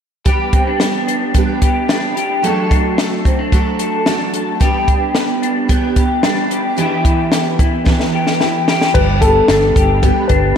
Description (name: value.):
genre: jangly indie pop.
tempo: 111 BPM.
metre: 4/4.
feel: straight.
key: G major.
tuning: A4 = 440 Hz.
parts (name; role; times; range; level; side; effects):
picked twelve-string acoustic guitar; accompaniment; 0.3-10.6 s; E3 to A4; -20 LUFS; right 5 dB; ensemble chorus.
electric guitar through a small old amp; arpeggios; 0.3-10.6 s; E3 to A4; -18 LUFS; left 2 dB; analog chorus, diffuse ambient delay.
compact cocktail drum kit; drums; 0.3-10.4 s; crash cymbal, hi-hat, kick drum, snare drum; -16 LUFS; equal; none.
dark upright piano; melody; 8.9-10.6 s; G4 to B4; -15 LUFS; left 4 dB; lush chorus, diffuse ambient delay.
vintage muted fingered electric bass; bass; 8.9-10.5 s; G1; -17 LUFS; equal; none.
room: wet lush hall reverb, RT60 2.4 s.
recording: dreamy mix soaked in reverb.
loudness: -12 LUFS.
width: side -8 dB against mid.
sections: 0.3-8.9 A section; 8.9-10.6 B section.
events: drum fill 7.9-8.9.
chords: 0.3 G; 2.4 D/F#; 4.6 G; 6.8 Em; 8.9 G.